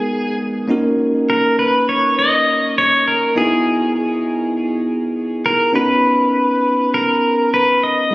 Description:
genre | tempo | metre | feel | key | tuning
sunset chillout | 101 BPM | 4/4 | swing 58% on 16ths | B major | A4 = 440 Hz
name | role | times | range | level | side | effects
pedal steel guitar | melody | 0.0-8.1 s | G#4 to D#5 | -15 LUFS | equal | tape echo
bell-like tine electric piano | accompaniment | 0.0-8.1 s | G#3 to A#4 | -18 LUFS | equal | auto-pan, digital delay
room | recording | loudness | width
moderate lush hall reverb, RT60 2.6 s | recorded on a phone in the room, studio reverb, compression | -14 LUFS | side -20 dB against mid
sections
0.0-8.1 A section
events
none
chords
0.0 G#m7; 0.7 D#m7; 3.4 Emaj9; 5.7 Bmaj7

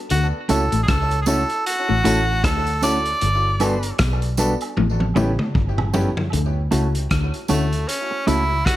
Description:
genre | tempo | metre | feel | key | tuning
lovers rock reggae | 77 BPM | 4/4 | swing 59% on 16ths | D major | A4 = 440 Hz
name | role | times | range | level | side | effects
edgy tenor saxophone | melody | 0.1-8.8 s | A3 to D5 | -22 LUFS | right 1 dB | tape echo
electric guitar through a small old amp | riff | 0.1-8.5 s | G2 to D3 | -27 LUFS | left 7 dB | phaser
vintage muted fingered electric bass | bass | 0.1-8.6 s | G1 to D2 | -22 LUFS | equal | none
vintage drum kit | drums | 0.1-8.8 s | hi-hat, kick drum, rim click, toms | -23 LUFS | equal | gated reverb
warm concert grand piano | accompaniment | 0.5-8.6 s | A3 to A4 | -27 LUFS | left 2 dB | tape echo
mellow electric guitar | stabs | 0.5-8.4 s | G3 to B4 | -24 LUFS | right 4 dB | tremolo
tambourine and woodblock | percussion | 0.5-8.5 s | none | -33 LUFS | right 8 dB | tape echo
room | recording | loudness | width
light reverb, small room ambience | none | -18 LUFS | side -14 dB against mid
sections
0.0-6.3 A section; 6.3-8.8 B section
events
drum fill 4.8-6.3; tenor saxophone solo 6.3-8.8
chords
0.1 Dmaj7; 3.2 Gmaj7; 4.8 A7; 6.3 Dmaj7

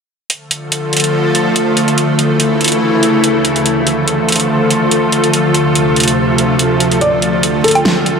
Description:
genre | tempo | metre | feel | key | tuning
heavy wobble dubstep | 143 BPM | 4/4 | swing 53% on 16ths, half-time | D minor | A4 = 442 Hz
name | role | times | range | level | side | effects
evolving wavetable pad | sustained chords | 0.6-8.2 s | D2 to A4 | -12 LUFS | equal | ensemble chorus, built-in reverb
dubstep drum kit | drums | 0.3-8.2 s | hi-hat, snare drum, woodblock | -15 LUFS | right 1 dB | none
felt-muted upright piano | melody | 7.0-8.2 s | A4 to D5 | -15 LUFS | left 1 dB | ping-pong delay
room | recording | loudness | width
wet plate reverb, RT60 1.6 s | dreamy mix soaked in reverb | -11 LUFS | side -6 dB against mid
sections
0.3-8.2 A section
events
none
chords
0.3 Dm; 2.0 A/D; 3.7 Dm; 5.3 F/D; 7.0 Dm

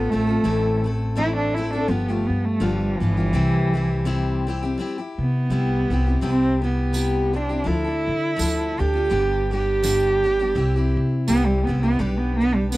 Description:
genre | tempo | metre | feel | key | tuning
acoustic folk duo or small band | 83 BPM | 4/4 | swing 57% on 8ths | G mixolydian | A4 = 440 Hz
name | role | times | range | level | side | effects
warm cello | melody | 0.0-12.8 s | E3 to G4 | -22 LUFS | right 2 dB | none
picked steel-string acoustic guitar | accompaniment | 0.0-12.8 s | G2 to B4 | -26 LUFS | left 3 dB | none
upright bass | bass | 0.0-12.8 s | G1 to D3 | -24 LUFS | equal | none
tambourine | percussion | 6.9-12.8 s | none | -30 LUFS | right 5 dB | none
room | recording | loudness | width
little or no reverb | dry, close 1970s-style studio recording | -19 LUFS | side -18 dB against mid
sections
0.0-12.8 A section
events
cello solo 0.0-12.8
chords
0.4 Am; 1.9 G7; 3.3 C; 7.7 Dm; 9.1 G; 10.6 C; 12.0 G/B

